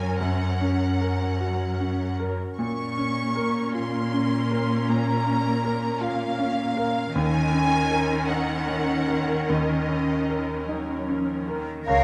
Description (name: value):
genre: cinematic, emotional film score for orchestra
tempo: 49-54 BPM (dotted quarters)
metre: 6/8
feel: rubato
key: unclear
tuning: A4 = 440 Hz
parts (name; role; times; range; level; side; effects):
- rich studio violin section; melody; 0.0-12.0 s; Ab4 to Db6; -32 LUFS; equal; none
- bright concert grand piano; accompaniment; 0.0-12.0 s; Db2 to Bb4; -30 LUFS; equal; none
- clear studio viola section; accompaniment; 0.0-12.0 s; Db4 to Bb4; -33 LUFS; equal; none
- rich studio cello section; bass; 0.0-12.0 s; Gb2 to Bb4; -29 LUFS; equal; none
- bright symphonic violin section; second line; 11.9-12.0 s; Db5; -30 LUFS; equal; none
- concert flute; second line; 11.9-12.0 s; F5; -22 LUFS; equal; none
- warm symphonic double bass section; bass; 11.9-12.0 s; Db2; -29 LUFS; equal; none
room: wet scoring stage reverb, RT60 1.7 s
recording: dark, warm production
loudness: -25 LUFS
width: mono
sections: 0.0-11.9 A section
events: none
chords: 0.0 Gb; 2.6 Bbm; 7.1 Ebm7